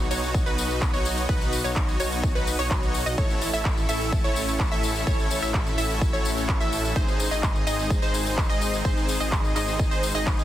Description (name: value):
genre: EDM, festival progressive house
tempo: 127 BPM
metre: 4/4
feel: straight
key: unclear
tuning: A4 = 439 Hz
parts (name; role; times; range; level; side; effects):
- lush unison pad; sustained chords; 0.0-10.4 s; G#3 to D#5; -34 LUFS; left 2 dB; chorus, phaser, sidechain pumping
- wide unison pluck; arpeggios; 0.0-10.4 s; B4 to E5; -32 LUFS; right 1 dB; cassette tape, sidechain pumping, tape echo
- supersaw chords; riff; 0.0-10.4 s; D#4 to E5; -28 LUFS; right 1 dB; sidechain pumping, tape echo
- detuned saw bass; bass; 0.0-10.4 s; G#1 to B1; -30 LUFS; equal; sidechain pumping
- big-room dance drum kit; drums; 0.0-10.4 s; handclaps, hi-hat, tambourine; -32 LUFS; left 2 dB; overdrive
- electronic kick drum; drums; 0.3-10.4 s; none; -25 LUFS; equal; overdrive
room: digital ambience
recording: dense, heavily limited modern master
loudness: -22 LUFS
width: side -12 dB against mid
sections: 0.0-10.4 A section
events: none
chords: 0.0 B; 3.2 A; 7.0 G#